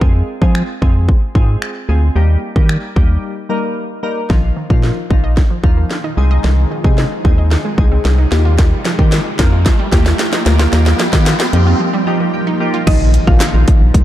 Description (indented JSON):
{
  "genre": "dance-pop",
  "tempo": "112 BPM",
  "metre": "4/4",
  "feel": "straight",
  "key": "Eb major",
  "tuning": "A4 = 441 Hz",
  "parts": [
    { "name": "glassy digital keys", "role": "accompaniment", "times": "0.0-14.0 s", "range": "Eb3 to G5", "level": "-22 LUFS", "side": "left 2 dB", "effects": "chorus, phaser, sidechain pumping" },
    { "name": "organ-like FM bass", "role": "bass", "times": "0.0-14.0 s", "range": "Bb1 to F3", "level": "-13 LUFS", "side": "equal", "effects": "sidechain pumping" },
    { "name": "house drum kit", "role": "drums", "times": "0.0-14.0 s", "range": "crash cymbal, finger snaps, handclaps, hi-hat, kick drum, snare drum", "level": "-14 LUFS", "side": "equal", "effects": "none" },
    { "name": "granular cloud pad", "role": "sustained chords", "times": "5.6-14.0 s", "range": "Bb2 to Ab4", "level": "-23 LUFS", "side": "right 1 dB", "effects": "built-in reverb, sidechain pumping" },
    { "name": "wide unison pluck", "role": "arpeggios", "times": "4.3-12.8 s", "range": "Eb3 to Eb5", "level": "-25 LUFS", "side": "right 4 dB", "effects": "sidechain pumping, digital delay" },
    { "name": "riser and impact", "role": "sound effects", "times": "7.2-14.0 s", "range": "none", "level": "-24 LUFS", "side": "right 1 dB", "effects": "none" },
    { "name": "group handclap", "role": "percussion", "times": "8.9-13.5 s", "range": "none", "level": "-30 LUFS", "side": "left 4 dB", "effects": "none" },
    { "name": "mallet-like synth pluck", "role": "melody", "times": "12.9-13.7 s", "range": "Eb4 to F5", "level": "-22 LUFS", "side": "equal", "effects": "chorus, digital delay" }
  ],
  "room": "light reverb",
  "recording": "dark, warm production",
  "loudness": "-11 LUFS",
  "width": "side -13 dB against mid",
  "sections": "0.0-4.3 A section; 4.3-12.9 B section; 12.9-14.0 C section",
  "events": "break 3.2-4.3, 11.8-12.9; build-up 4.3-12.9; drum fill 4.3-11.8; riser 7.2-12.9; synth keys fill 11.8-12.9; drop 12.9-14.0; impact 12.9-14.0",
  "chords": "0.0 Fm; 2.2 Eb; 4.3 Bbsus4; 6.2 Ab/C; 8.3 Ebadd9; 12.9 Bbsus4",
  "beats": "| 0.01 0.55 1.08 1.62 | 2.16 2.69 3.23 3.76 | 4.30 4.83 5.37 5.91 | 6.44 6.98 7.51 8.05 | 8.59 9.12 9.66 10.19 | 10.73 11.26 11.80 12.34 | 12.87 13.41 13.94"
}